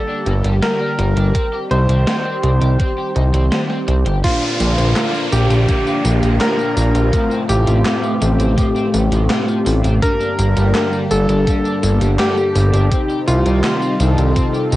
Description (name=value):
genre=synthwave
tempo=83 BPM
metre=4/4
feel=straight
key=Bb major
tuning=A4 = 436 Hz
part: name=clear electric grand piano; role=melody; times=0.0-14.8 s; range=F4 to C5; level=-22 LUFS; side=equal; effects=cassette tape, tape echo
part: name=phased analog pad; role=sustained chords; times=0.0-14.8 s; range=C3 to G4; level=-24 LUFS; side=equal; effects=phaser, chorus, sidechain pumping
part: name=overdriven electric guitar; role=riff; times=0.1-14.8 s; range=F3 to C5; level=-30 LUFS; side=left 2 dB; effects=lush chorus, tape echo
part: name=fat analog bass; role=bass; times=0.3-14.8 s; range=G1 to C2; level=-14 LUFS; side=equal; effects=sidechain pumping
part: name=gated 80s digital drum machine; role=drums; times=0.3-14.8 s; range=crash cymbal, handclaps, hi-hat, snare drum, tambourine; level=-22 LUFS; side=equal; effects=gated reverb, gated reverb snare, cassette tape
part: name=electronic kick drum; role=drums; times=1.3-14.5 s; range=none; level=-18 LUFS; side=equal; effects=overdrive, cassette tape
part: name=mellow synth brass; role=stabs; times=4.2-14.8 s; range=G2 to A4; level=-20 LUFS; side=left 2 dB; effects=chorus
part: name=downlifter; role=sound effects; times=4.2-10.0 s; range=none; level=-26 LUFS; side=right 1 dB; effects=none
room=moderate studio reverb, RT60 0.5 s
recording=home recording on cassette, nothing above 10.4 kHz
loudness=-14 LUFS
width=side -16 dB against mid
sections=0.0-4.2 A section; 4.2-14.8 B section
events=none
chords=0.0 Gm; 1.3 Cm; 4.2 Bb; 7.1 F/A; 10.0 Gm; 12.9 Cm